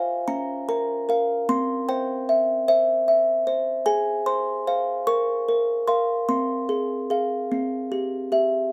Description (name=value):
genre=classical, lullaby for music box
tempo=50 BPM (dotted quarters)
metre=6/8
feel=straight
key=unclear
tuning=A4 = 440 Hz
part: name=music box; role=solo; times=0.0-8.7 s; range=C4 to Db6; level=-24 LUFS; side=equal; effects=none
room=light reverb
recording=none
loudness=-23 LUFS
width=mono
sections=0.0-8.7 A section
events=none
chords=0.3 Bbm/Db; 1.5 C; 3.9 Fm/Ab; 5.1 Bbm; 6.3 Fm/C; 7.5 C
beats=0.28 | 1.48 2.68 | 3.86 5.06 | 6.27 7.50